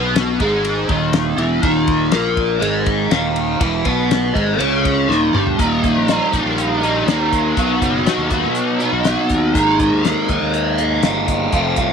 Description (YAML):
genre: psychedelic rock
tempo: 121 BPM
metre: 4/4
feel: straight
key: unclear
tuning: A4 = 437 Hz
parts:
  - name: overdriven electric guitar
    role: riff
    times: 0.0-11.9 s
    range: Eb2 to F#4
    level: -16 LUFS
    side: equal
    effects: flanger
  - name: fuzz fingered electric bass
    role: bass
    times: 0.0-11.9 s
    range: Eb1 to B2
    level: -23 LUFS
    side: right 1 dB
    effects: overdrive
  - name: damped 70s drum kit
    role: drums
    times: 0.2-11.9 s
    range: hi-hat, kick drum, ride cymbal, snare drum, toms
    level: -22 LUFS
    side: left 3 dB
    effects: none
room: moderate spring reverb, RT60 1.8 s, small room ambience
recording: 1960s-style stereo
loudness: -14 LUFS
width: side -6 dB against mid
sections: 0.0-5.6 A section; 5.6-11.9 B section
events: drum fill 5.1-5.6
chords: 0.0 Eb; 7.6 B; 9.5 Absus2